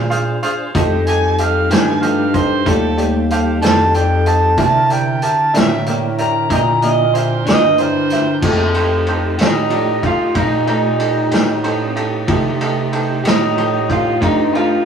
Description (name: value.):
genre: slow blues.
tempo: 62 BPM (dotted quarters).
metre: 12/8.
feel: straight.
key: F mixolydian.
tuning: A4 = 440 Hz.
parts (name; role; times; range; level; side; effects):
bright upright piano; accompaniment; 0.0-14.8 s; Eb4 to F5; -23 LUFS; right 2 dB; none.
mellow tonewheel organ; sustained chords; 0.0-14.8 s; D3 to C5; -25 LUFS; left 2 dB; slow rotary speaker, overdrive, chorus vibrato.
mellow bass clarinet; bass; 0.0-14.8 s; Eb2 to C3; -19 LUFS; equal; none.
vintage drum kit; drums; 0.1-14.7 s; crash cymbal, hi-hat, kick drum, ride cymbal, snare drum; -19 LUFS; equal; none.
electric guitar through a small old amp; accompaniment; 0.7-14.7 s; C3 to G4; -24 LUFS; left 2 dB; tremolo.
overdriven harmonica; second line; 1.1-8.4 s; A4 to Bb5; -17 LUFS; right 2 dB; none.
electric guitar through a small old amp; melody; 9.4-14.8 s; Eb4 to F4; -17 LUFS; equal; spring reverb.
room: moderate stone room reverb, RT60 1.2 s.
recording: rough rehearsal-room recording, small room ambience.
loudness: -13 LUFS.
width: side -7 dB against mid.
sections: 0.0-8.4 A section; 8.4-14.8 A section.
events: harmonica solo 0.0-8.4; clean electric guitar solo 8.4-14.8.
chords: 0.0 Bb9; 0.7 F9; 4.6 C9; 8.4 F9.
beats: | 0.75 1.71 2.67 3.62 | 4.58 5.54 6.50 7.46 | 8.43 9.39 10.35 11.32 | 12.29 13.25 14.22.